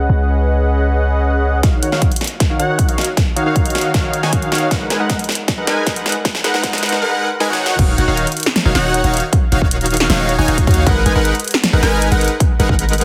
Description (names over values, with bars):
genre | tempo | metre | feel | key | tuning
future bass | 156 BPM | 4/4 | half-time | Eb minor | A4 = 440 Hz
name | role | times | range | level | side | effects
big bright polysynth | riff | 0.0-13.0 s | Eb3 to Ab5 | -20 LUFS | equal | chorus, sidechain pumping, dub echo
warm 808-style bass | bass | 0.0-1.6, 7.8-13.0 s | Eb1 to Eb2 | -18 LUFS | equal | sidechain pumping
big-room dance drum kit | drums | 1.6-13.0 s | crash cymbal, hi-hat, snare drum | -22 LUFS | equal | high-pass filter on snare, small room ambience, high-pass filter on hats, high-pass filter on cymbals
electronic kick drum | drums | 1.6-12.8 s | none | -18 LUFS | equal | small room ambience
room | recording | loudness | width
moderate digital room reverb, RT60 1.1 s | heavily compressed radio sound, multiband compression, high-pass filter | -16 LUFS | mono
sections
0.0-1.6 A section; 1.6-7.8 B section; 7.8-13.0 C section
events
build-up 1.6-7.8; drum fill 1.6-7.0, 7.4-7.8; filter sweep on analog polysynth 1.6-7.8; filter sweep 1.6-7.8; drop 7.8-13.0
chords
0.0 Db7sus4; 1.6 Ebm7; 4.7 Abm7; 7.6 Ebm7; 10.9 Abm7